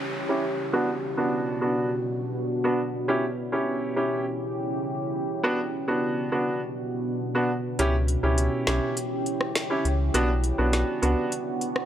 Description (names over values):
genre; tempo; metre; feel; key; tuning
dancehall; 102 BPM; 4/4; straight; unclear; A4 = 440 Hz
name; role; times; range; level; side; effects
deep dark ambient pad; sustained chords; 0.0-11.9 s; B2 to G4; -29 LUFS; equal; chorus, built-in reverb, low-pass filter
downlifter; sound effects; 0.0-3.1 s; none; -39 LUFS; equal; none
clear grand piano; accompaniment; 0.3-11.3 s; B3 to G4; -26 LUFS; right 1 dB; low-pass filter
round analog bass; bass; 7.8-11.2 s; B1 to C#2; -24 LUFS; equal; none
deep house drum kit; drums; 7.8-11.9 s; finger snaps, hi-hat, rim click, snare drum; -28 LUFS; left 1 dB; none
room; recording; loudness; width
light reverb; dry, gritty hardware recording; -24 LUFS; side -10 dB against mid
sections
0.0-7.8 A section; 7.8-11.9 B section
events
filter sweep 0.0-7.8; kick muted 7.8-11.9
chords
0.0 C#dim; 0.7 Bm; 3.1 C#dim; 5.4 Bm; 7.8 C#dim; 10.1 Bm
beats
0.14 | 0.73 1.32 1.91 2.50 | 3.08 3.67 4.26 4.85 | 5.44 6.03 6.62 7.20 | 7.79 8.38 8.97 9.56 | 10.14 10.73 11.32